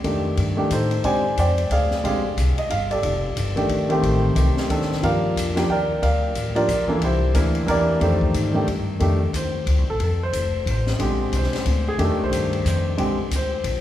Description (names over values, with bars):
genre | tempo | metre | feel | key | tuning
jazz piano trio | 181 BPM | 3/4 | swing 62% on 8ths | F mixolydian | A4 = 438 Hz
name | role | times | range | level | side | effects
warm grand piano | melody | 0.0-13.8 s | D3 to Ab5 | -22 LUFS | equal | none
upright bass | bass | 0.0-13.8 s | F1 to Bb2 | -23 LUFS | equal | none
open jazz drum kit | drums | 0.0-13.7 s | hi-hat, kick drum, ride cymbal, snare drum | -30 LUFS | left 2 dB | none
room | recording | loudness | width
moderate church reverb, RT60 3.5 s | recorded in a church or concert hall, studio reverb | -19 LUFS | side -12 dB against mid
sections
0.0-9.0 A section; 9.0-13.8 B section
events
grand piano solo 9.0-13.8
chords
0.0 F13; 1.0 Bb13; 3.0 F13; 4.0 Am7b5; 4.7 D5; 5.0 Gm7; 7.0 C9; 8.0 F13; 9.0 F7; 11.0 Bb13; 12.0 F13; 13.0 Bb13